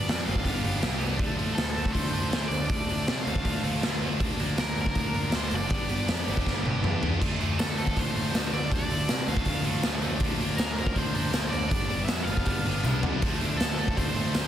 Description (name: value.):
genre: indie rock.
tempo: 160 BPM.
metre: 4/4.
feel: straight.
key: D minor.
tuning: A4 = 440 Hz.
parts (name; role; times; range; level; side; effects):
crunchy overdriven guitar; melody; 0.0-14.5 s; A4 to F5; -34 LUFS; equal; none.
high-gain distorted guitar; riff; 0.0-14.5 s; F3 to G4; -31 LUFS; equal; distortion.
fuzz picked electric bass; bass; 0.0-14.5 s; F#1 to C3; -31 LUFS; equal; overdrive.
raw garage drum kit; drums; 0.1-14.4 s; crash cymbal, hi-hat, kick drum, snare drum, splash cymbal, toms; -28 LUFS; equal; none.
tambourine; percussion; 7.6-14.4 s; none; -44 LUFS; left 7 dB; none.
room: small room ambience.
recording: dense, heavily limited modern master.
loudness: -25 LUFS.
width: side -10 dB against mid.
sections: 0.0-7.2 A section; 7.2-14.5 A section.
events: drum fill 6.5-7.2, 12.8-13.2.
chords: 0.0 G; 1.2 Dm; 4.2 Bb/D; 5.7 G; 7.2 Dm; 10.2 Bb/D; 11.7 G; 13.2 Dm.